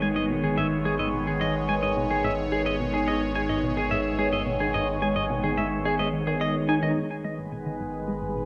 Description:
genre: ambient, sequencer-driven space music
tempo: 108 BPM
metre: 4/4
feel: straight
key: G# minor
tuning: A4 = 440 Hz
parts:
  - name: phased analog pad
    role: sustained chords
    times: 0.0-8.5 s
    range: D#3 to C#5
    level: -29 LUFS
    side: equal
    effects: phaser, chorus
  - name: semi-hollow electric guitar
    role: arpeggios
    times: 0.0-6.9 s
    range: G#4 to G#5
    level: -31 LUFS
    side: equal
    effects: analog delay
  - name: tight sequenced synth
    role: riff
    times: 0.0-8.5 s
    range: G#2 to D#4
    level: -34 LUFS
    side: equal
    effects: chorus, phaser, analog delay
  - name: warm sub bass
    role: bass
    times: 0.0-8.5 s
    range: G#1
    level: -40 LUFS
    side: equal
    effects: none
room: wet plate reverb, RT60 2.4 s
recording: dreamy mix soaked in reverb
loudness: -26 LUFS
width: mono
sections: 0.0-7.0 A section; 7.0-8.5 B section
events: filter sweep on synth arpeggio sound 0.0-7.0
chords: 0.0 G#m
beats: | 0.30 0.85 1.41 1.97 | 2.52 3.08 3.63 4.19 | 4.74 5.30 5.86 6.41 | 6.97 7.52 8.08

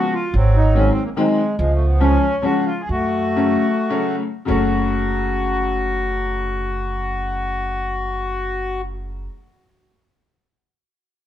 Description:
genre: musette waltz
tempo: 100-144 BPM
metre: 3/4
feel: straight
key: F# harmonic minor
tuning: A4 = 442 Hz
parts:
  - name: accordion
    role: melody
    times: 0.0-8.8 s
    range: E#3 to G#4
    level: -22 LUFS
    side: left 1 dB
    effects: plate reverb
  - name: bright upright piano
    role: accompaniment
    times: 0.0-9.3 s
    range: C#3 to C#4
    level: -22 LUFS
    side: left 3 dB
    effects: none
  - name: upright bass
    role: bass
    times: 0.3-9.3 s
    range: F#1 to F#2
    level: -21 LUFS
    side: right 1 dB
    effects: none
room: wet small room ambience, RT60 0.5 s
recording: heard from further back in the room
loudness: -17 LUFS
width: side -11 dB against mid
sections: 0.0-4.5 A section; 4.5-8.1 B section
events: slowing down 1.6-4.5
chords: 0.3 G#7; 1.6 C#; 2.9 F#m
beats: | 0.34 0.75 1.17 | 1.59 2.01 2.44 | 2.90 3.38 3.90 | 4.48 5.07 5.67 | 6.26 6.85 7.45

